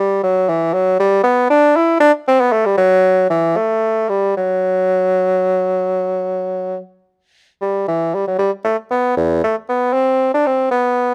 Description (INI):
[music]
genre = classical, baroque-style fantasia for unaccompanied bassoon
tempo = 76 BPM (dotted quarters)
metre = 12/8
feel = uneven beats, rubato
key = unclear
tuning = A4 = 440 Hz
[part]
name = clear bassoon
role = solo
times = 0.0-11.1 s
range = E2 to E4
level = -16 LUFS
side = equal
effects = none
[sound]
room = little or no reverb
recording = close, detailed microphones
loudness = -16 LUFS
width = mono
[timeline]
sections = 0.0-11.1 A section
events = none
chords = none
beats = 0.49 | 1.25 2.02 2.79 3.58 | 4.38 5.18 6.01 6.81 | 7.63 8.41 9.19 9.96 | 10.73